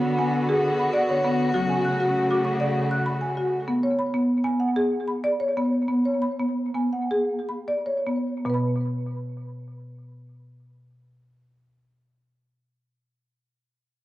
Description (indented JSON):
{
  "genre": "world meditative, meditative tuned percussion",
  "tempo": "146-197 BPM (eighths)",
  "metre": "7/8",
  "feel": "straight",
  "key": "B kumoi",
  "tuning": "A4 = 439 Hz",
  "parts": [
    { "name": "rich chamber string section", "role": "sustained chords", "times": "0.0-3.7 s", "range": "C#3 to F#4", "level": "-24 LUFS", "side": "equal", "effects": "cassette tape" },
    { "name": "marimba with medium hard mallets", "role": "arpeggios", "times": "0.0-13.5 s", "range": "B2 to F#6", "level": "-24 LUFS", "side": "equal", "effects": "cassette tape, tape echo" }
  ],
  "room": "wet studio reverb, RT60 0.6 s",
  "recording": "home recording on cassette",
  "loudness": "-22 LUFS",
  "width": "side -16 dB against mid",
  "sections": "0.0-8.5 A section; 8.5-14.0 B section",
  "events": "slowing down 3.7-8.5",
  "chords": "0.0 Bm; 1.5 F#m; 3.7 Bm; 8.5 N.C.",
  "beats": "0.02 0.32 0.62 0.93 1.24 | 1.54 1.84 2.15 2.46 2.76 3.07 3.37 | 3.68 3.98 4.29 4.60 4.92 5.24 5.56 | 5.89 6.23 6.57 6.93 7.29 7.67 8.05 | 8.45 8.86 9.27 9.68 10.09 10.50 10.91 | 11.32 11.73 12.14 12.54 12.95 13.36"
}